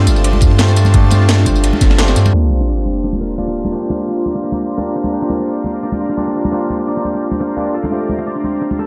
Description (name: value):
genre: liquid drum and bass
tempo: 172 BPM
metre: 4/4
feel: swing 54% on 16ths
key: unclear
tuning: A4 = 440 Hz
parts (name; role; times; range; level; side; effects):
- overdriven tine electric piano; accompaniment; 0.0-8.9 s; A3 to D5; -23 LUFS; equal; vintage 12-bit sampler grit, delay
- shimmering ambient pad; sustained chords; 0.0-8.9 s; F4 to Bb5; -29 LUFS; equal; chorus, built-in reverb, phaser
- concert harp; arpeggios; 0.0-8.9 s; A3 to C5; -24 LUFS; equal; low-pass filter, delay
- warm sub bass; bass; 0.0-2.3 s; G1 to G2; -14 LUFS; equal; none
- crunchy breakbeat drum kit; drums; 0.1-2.3 s; ride cymbal, snare drum; -26 LUFS; equal; high-pass filter on cymbals, high-pass filter on snare, high-pass filter on room
- drum and bass drum kit; drums; 0.1-2.3 s; hi-hat, snare drum, tambourine; -22 LUFS; equal; low-pass filter on hats, low-pass filter on perc, low-pass filter on snare, low-pass filter on room
- congas and bongos; percussion; 0.1-8.9 s; none; -26 LUFS; equal; none
- electronic kick drum; drums; 0.4-1.9 s; none; -14 LUFS; equal; none
- sub drop; sound effects; 2.3-3.7 s; none; -20 LUFS; equal; none
room: light reverb, studio ambience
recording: dark, warm production, low-pass filter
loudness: -15 LUFS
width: mono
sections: 0.0-2.3 A section; 2.3-8.9 B section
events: band accent 2.0; impact 2.3-3.7; filter sweep on harp 2.3-8.9; filter sweep 2.3-8.9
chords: 0.0 G9sus4; 2.3 C9sus4; 7.7 G9sus4